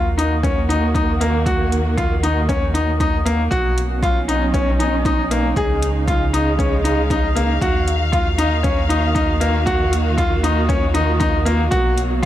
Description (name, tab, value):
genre	piano and strings electronica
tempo	117 BPM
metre	4/4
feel	straight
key	Eb minor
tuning	A4 = 439 Hz
part	dark studio string section	sustained chords	0.0-12.3 s	B2 to F5	-23 LUFS	right 2 dB	sidechain pumping
part	bright grand piano	riff	0.0-12.3 s	Bb3 to Ab4	-20 LUFS	left 2 dB	digital delay
part	round analog bass	bass	0.0-12.3 s	B1 to Eb2	-21 LUFS	equal	sidechain pumping
part	electronic hi-hat	drums	0.2-12.3 s	none	-31 LUFS	left 1 dB	overdrive, studio reverb
part	electronic kick drum	drums	0.4-12.3 s	none	-22 LUFS	equal	overdrive, studio reverb
room	light reverb, studio reverb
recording	dark, warm production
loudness	-16 LUFS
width	side -12 dB against mid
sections	0.0-12.3 A section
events	none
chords	0.0 Ebm; 3.5 B; 5.6 Dbadd9; 7.6 Ebm; 11.7 B5